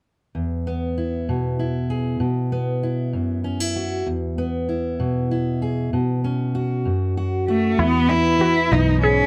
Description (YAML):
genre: indie folk with a building arrangement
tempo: 64 BPM (dotted quarters)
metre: 6/8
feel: straight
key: E major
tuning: A4 = 445 Hz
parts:
  - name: fingerpicked steel-string acoustic guitar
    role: accompaniment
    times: 0.3-9.3 s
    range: E2 to G#4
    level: -24 LUFS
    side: equal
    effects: none
  - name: warm cello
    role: melody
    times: 7.5-9.3 s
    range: A3 to E4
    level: -20 LUFS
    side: equal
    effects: none
  - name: warbly dusty pluck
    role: arpeggios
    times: 7.8-9.3 s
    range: E3 to G#4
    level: -26 LUFS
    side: equal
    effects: chorus
  - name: picked electric bass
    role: bass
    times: 7.8-9.2 s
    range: B1 to E2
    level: -23 LUFS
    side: equal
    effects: none
room: light reverb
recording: none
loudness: -22 LUFS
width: mono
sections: 0.3-7.8 A section; 7.8-9.3 B section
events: none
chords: 0.3 E; 2.2 Bsus4; 4.1 E; 5.9 Bsus2; 7.8 E